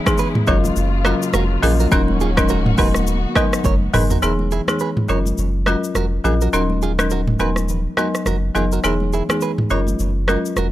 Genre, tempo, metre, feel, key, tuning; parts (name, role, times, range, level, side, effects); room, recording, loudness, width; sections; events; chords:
afrobeats; 104 BPM; 4/4; swing 58% on 16ths; F# major; A4 = 439 Hz
muted studio string section; sustained chords; 0.0-4.2 s; C#3 to F#4; -27 LUFS; left 1 dB
folk marimba with hard mallets; accompaniment; 0.1-10.5 s; E3 to A#4; -20 LUFS; left 2 dB
afro-pop drum kit; drums; 0.1-10.7 s; hi-hat, kick drum, rim click, shaker, toms; -21 LUFS; equal
congas; percussion; 0.1-10.7 s; -28 LUFS; equal
direct-recorded clean electric guitar; riff; 0.2-10.7 s; E4 to D#5; -26 LUFS; right 9 dB; tape echo
saturated sub bass; bass; 0.5-10.7 s; D#1 to A#1; -20 LUFS; equal
little or no reverb; dry, gritty hardware recording; -16 LUFS; side -14 dB against mid
0.0-4.2 A section; 4.2-10.7 B section
drum fill 3.6-4.2; break 4.2-10.7
0.5 F#maj7; 1.9 D#m7; 2.8 Bmaj7/D#; 4.2 Emaj7; 5.1 F#maj7; 6.5 D#m7; 7.4 Bmaj7/D#; 8.8 Emaj7; 9.7 F#maj7